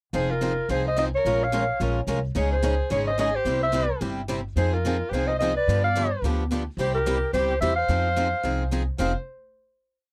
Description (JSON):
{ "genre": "acoustic string swing (jazz manouche)", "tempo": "217 BPM", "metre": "4/4", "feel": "swing 57% on 8ths", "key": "F minor", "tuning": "A4 = 441 Hz", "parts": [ { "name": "mellow clarinet", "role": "melody", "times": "0.1-9.1 s", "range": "Bb4 to F5", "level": "-27 LUFS", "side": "equal", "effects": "none" }, { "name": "picked steel-string acoustic guitar", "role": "accompaniment", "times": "0.1-9.1 s", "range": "C3 to Bb4", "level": "-36 LUFS", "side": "equal", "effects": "none" }, { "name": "picked swing-style acoustic guitar", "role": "accompaniment", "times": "0.1-9.1 s", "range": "C3 to Bb4", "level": "-32 LUFS", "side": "equal", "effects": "none" }, { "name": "upright bass", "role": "bass", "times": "0.1-9.1 s", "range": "F1 to G2", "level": "-30 LUFS", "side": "equal", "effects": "none" }, { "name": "dark violin", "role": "second line", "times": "0.2-9.1 s", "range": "F4 to D5", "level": "-35 LUFS", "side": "equal", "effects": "none" } ], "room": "little or no reverb", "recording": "dry, close 1970s-style studio recording", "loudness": "-25 LUFS", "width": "mono", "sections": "0.1-9.0 A section; 9.0-10.1 final chord", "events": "none", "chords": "0.1 Fm7; 1.2 Bbm7; 2.4 Dbsus2; 3.5 C; 4.6 Fm7; 5.7 G7; 6.8 C; 7.9 Fm7", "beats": "| 0.14 0.42 0.69 0.97 | 1.25 1.52 1.80 2.08 | 2.35 2.63 2.91 3.19 | 3.46 3.74 4.02 4.30 | 4.58 4.85 5.13 5.41 | 5.68 5.96 6.24 6.51 | 6.79 7.07 7.34 7.61 | 7.89 8.16 8.44 8.71 | 8.98" }